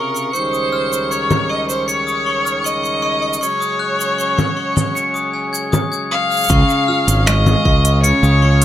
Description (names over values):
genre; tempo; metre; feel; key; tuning
folktronica; 78 BPM; 4/4; straight; Db major; A4 = 440 Hz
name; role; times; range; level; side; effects
rich violin; melody; 0.0-8.6 s; Bb4 to F5; -19 LUFS; left 1 dB; ping-pong delay
glockenspiel with brass mallets; second line; 0.0-8.6 s; Ab5 to Db7; -21 LUFS; left 2 dB; tape echo
pedal harmonium; sustained chords; 0.0-8.6 s; Db2 to F4; -25 LUFS; right 1 dB; vintage 12-bit sampler grit
twinkling granular texture; texture; 0.0-6.5 s; Db7; -31 LUFS; right 5 dB; built-in reverb
organic electronic drum kit; drums; 0.2-8.6 s; cabasa, congas, finger snaps, hi-hat; -19 LUFS; equal; none
nylon-string guitar; arpeggios; 6.5-8.6 s; Db3 to F4; -20 LUFS; right 1 dB; none
growling fingered electric bass; bass; 6.5-8.6 s; Ab1 to Db2; -13 LUFS; equal; overdrive
electronic kick drum; drums; 6.5-7.8 s; none; -17 LUFS; equal; none
room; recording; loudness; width
moderate studio reverb, RT60 0.7 s; none; -14 LUFS; side -12 dB against mid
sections
0.0-6.5 A section; 6.5-8.6 B section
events
none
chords
0.3 Eb7/Db; 3.4 Ab7sus4/Db; 6.5 Db